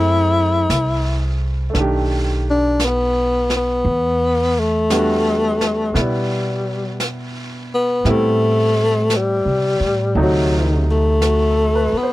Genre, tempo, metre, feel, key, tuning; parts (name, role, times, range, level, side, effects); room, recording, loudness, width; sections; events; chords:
jazz ballad; 57 BPM; 4/4; swing 66% on 8ths; E minor; A4 = 439 Hz
breathy tenor saxophone; melody; 0.0-12.1 s; F#3 to E4; -17 LUFS; left 2 dB
clear concert grand piano; accompaniment; 0.0-12.1 s; C3 to C5; -24 LUFS; right 1 dB
upright bass; bass; 0.0-12.0 s; B1 to C3; -20 LUFS; right 1 dB
vintage brush drum kit; drums; 0.7-12.1 s; brushed snare drum, hi-hat, snare drum; -28 LUFS; right 1 dB
little or no reverb; dry, close 1970s-style studio recording; -15 LUFS; side -16 dB against mid
0.0-12.1 A section
0.0 F#m7b5; 1.8 B7alt; 3.9 Em9; 8.1 Am7; 10.2 D7b9